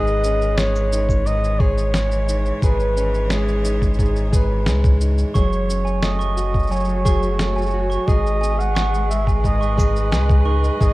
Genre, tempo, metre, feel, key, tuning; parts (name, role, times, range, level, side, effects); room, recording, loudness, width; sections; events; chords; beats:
folktronica; 88 BPM; 4/4; straight; C# minor; A4 = 438 Hz
mellow flugelhorn; melody; 0.0-10.9 s; G#4 to F#5; -25 LUFS; right 1 dB
warm string quartet; sustained chords; 0.0-10.9 s; E3 to D#5; -31 LUFS; left 1 dB
nylon-string guitar; arpeggios; 0.0-10.9 s; G#2 to G#4; -25 LUFS; equal
warm sub bass; bass; 0.0-10.9 s; F#1 to C#2; -20 LUFS; equal
electronic shaker and snare drum; drums; 0.1-10.9 s; -27 LUFS; equal; studio ambience
electronic kick drum; drums; 1.1-10.9 s; -18 LUFS; equal; studio ambience
glockenspiel with soft plastic mallets; second line; 5.3-10.6 s; G#5 to C#6; -27 LUFS; right 6 dB; tape echo
light reverb, small room ambience; rough home demo mix; -16 LUFS; side -19 dB against mid
0.0-10.9 A section
0.0 C#madd9/G#; 5.4 F#madd9; 8.1 G#m
0.58 1.26 1.94 | 2.62 3.31 3.99 4.67 | 5.35 6.03 6.71 7.40 | 8.08 8.76 9.44 10.12 | 10.81